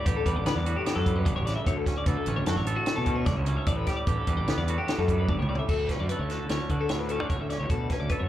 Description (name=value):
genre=math rock and midwest emo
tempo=149 BPM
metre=5/4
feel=straight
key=D major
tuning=A4 = 437 Hz
part: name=twangy electric guitar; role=accompaniment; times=0.0-8.3 s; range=D2 to A4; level=-33 LUFS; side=right 5 dB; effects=slapback echo
part: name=twelve-string electric guitar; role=arpeggios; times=0.0-8.3 s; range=F#4 to E5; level=-32 LUFS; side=left 5 dB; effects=digital delay, slapback echo
part: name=fuzz fingered electric bass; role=bass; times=0.1-8.3 s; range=G1 to D3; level=-29 LUFS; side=equal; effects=overdrive
part: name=compact cocktail drum kit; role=drums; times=0.1-8.2 s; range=crash cymbal, hi-hat, kick drum, snare drum, toms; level=-29 LUFS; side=equal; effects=none
room=little or no reverb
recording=live gig heard through the venue's PA, club reverb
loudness=-25 LUFS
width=side -12 dB against mid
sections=0.0-5.7 A section; 5.7-8.3 B section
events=drum fill 5.3-5.7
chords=0.0 A9sus4; 1.7 Dmaj7; 3.7 A9sus4; 5.7 Dmaj7